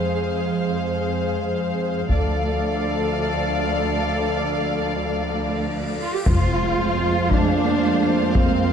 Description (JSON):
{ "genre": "cinematic, epic orchestral film score", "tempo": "free time", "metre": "none", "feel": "none", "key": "unclear", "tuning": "A4 = 440 Hz", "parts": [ { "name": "rich symphonic violin section", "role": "melody", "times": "0.0-8.7 s", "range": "F5", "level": "-31 LUFS", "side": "left 4 dB", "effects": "none" }, { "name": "warm symphonic violin section", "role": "second line", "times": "0.0-8.7 s", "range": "C5 to D5", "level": "-29 LUFS", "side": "left 3 dB", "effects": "none" }, { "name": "warm symphonic viola section", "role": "accompaniment", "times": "0.0-8.7 s", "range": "Ab3 to A4", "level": "-29 LUFS", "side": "right 1 dB", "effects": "none" }, { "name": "clear woodwind section", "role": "sustained chords", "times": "0.0-8.7 s", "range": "Ab3 to F5", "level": "-30 LUFS", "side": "equal", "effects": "none" }, { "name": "mellow French horn section", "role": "sustained chords", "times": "0.0-8.7 s", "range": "F3 to C5", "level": "-28 LUFS", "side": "left 4 dB", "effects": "none" }, { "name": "rich symphonic cello section", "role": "bass", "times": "0.0-8.7 s", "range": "D2 to G4", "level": "-24 LUFS", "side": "right 3 dB", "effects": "none" }, { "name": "rich symphonic double bass section", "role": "bass", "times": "2.1-2.6, 6.3-8.7 s", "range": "D2 to F2", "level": "-25 LUFS", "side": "right 3 dB", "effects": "none" }, { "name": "solo taiko drums", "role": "drums", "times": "2.1-3.1, 6.3-8.7 s", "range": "none", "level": "-21 LUFS", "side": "left 1 dB", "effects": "none" }, { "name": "cymbal swell and impact", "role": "sound effects", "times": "5.6-8.4 s", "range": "none", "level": "-34 LUFS", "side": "left 1 dB", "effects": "none" }, { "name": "timpani", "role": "percussion", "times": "6.3-7.0 s", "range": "F2", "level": "-27 LUFS", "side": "left 1 dB", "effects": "none" } ], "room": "moderate recital hall reverb, RT60 1.3 s", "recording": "dark, warm production", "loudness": "-19 LUFS", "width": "side -7 dB against mid", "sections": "0.0-6.3 A section; 6.3-8.7 B section", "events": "cymbal swell 5.6-6.3; impact 6.3-8.4", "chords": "0.0 Fm; 2.1 Dm; 6.3 Fm" }